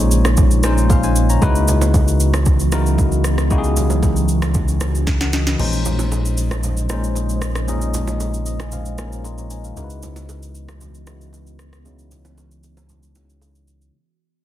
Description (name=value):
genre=amapiano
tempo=115 BPM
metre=4/4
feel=straight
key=unclear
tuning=A4 = 440 Hz
part: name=bell-like tine electric piano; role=accompaniment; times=0.0-14.0 s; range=Bb2 to C6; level=-22 LUFS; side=left 4 dB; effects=low-pass filter
part: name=glassy FM pad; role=sustained chords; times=0.0-13.9 s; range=Db3 to Eb5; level=-26 LUFS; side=right 2 dB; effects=ensemble chorus, built-in reverb, phaser, sidechain pumping, low-pass filter
part: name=punchy sub bass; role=bass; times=0.0-13.9 s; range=Bb1 to Db2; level=-20 LUFS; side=equal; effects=none
part: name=smooth R&B drum kit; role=drums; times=0.1-13.9 s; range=crash cymbal, kick drum, rim click, shaker, snare drum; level=-20 LUFS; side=equal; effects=overdrive
part: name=bongos and congas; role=percussion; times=0.2-13.5 s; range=none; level=-29 LUFS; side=right 6 dB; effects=none
room=little or no reverb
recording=dense, heavily limited modern master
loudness=-15 LUFS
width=side -13 dB against mid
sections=0.0-13.9 A section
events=fade-out 0.0-13.9; filter sweep 0.0-13.9; drum fill 5.1-5.6; tine electric piano fill 8.2-9.8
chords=0.0 Bbm11; 1.4 Dbm11; 5.6 Bbm11; 9.8 Dbm11